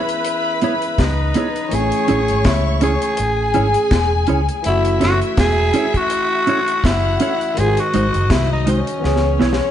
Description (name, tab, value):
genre	lovers rock reggae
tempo	82 BPM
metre	4/4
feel	swing 56% on 16ths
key	C# minor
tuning	A4 = 440 Hz
part	growling tenor saxophone	melody	0.0-9.7 s	C#4 to G#4	-20 LUFS	equal	none
part	warm studio string section	second line	0.0-9.7 s	C#4 to C#6	-24 LUFS	left 3 dB	none
part	barky tine electric piano	accompaniment	0.0-9.7 s	D#3 to B#4	-25 LUFS	left 2 dB	overdrive, phaser
part	deep reggae drum kit	drums	0.1-9.7 s	hi-hat, kick drum, snare drum	-21 LUFS	equal	none
part	mellow electric guitar	stabs	0.6-9.5 s	G#3 to C#5	-20 LUFS	right 3 dB	none
part	vintage muted fingered electric bass	bass	1.0-9.6 s	E1 to C#2	-20 LUFS	equal	none
room	moderate stone room reverb, RT60 1.0 s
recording	band playing live in one room, nothing above 10.6 kHz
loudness	-15 LUFS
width	side -10 dB against mid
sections	0.0-9.7 A section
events	drum fill 9.0-9.7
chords	0.0 C#m7; 1.7 Amaj7; 4.6 F#m7; 7.6 G#7; 9.0 C#m7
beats	0.25 0.98 | 1.72 2.45 3.18 3.91 | 4.64 5.38 6.11 6.84 | 7.57 8.30 9.04